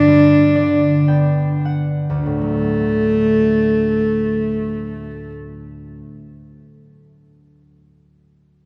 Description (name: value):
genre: celtic folk, Celtic slow air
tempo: 49-65 BPM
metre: 3/4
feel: rubato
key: D major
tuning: A4 = 440 Hz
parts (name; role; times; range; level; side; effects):
- dark cello; melody; 0.0-5.3 s; A3 to D4; -18 LUFS; equal; none
- concert harp; accompaniment; 0.0-6.2 s; D2 to G5; -22 LUFS; equal; none
room: wet cathedral reverb, RT60 4.2 s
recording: none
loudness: -16 LUFS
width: mono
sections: 0.0-2.3 A section; 2.3-5.7 B section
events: slowing down 0.0-2.3; harp fill 0.1-2.3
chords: 0.0 G; 2.3 D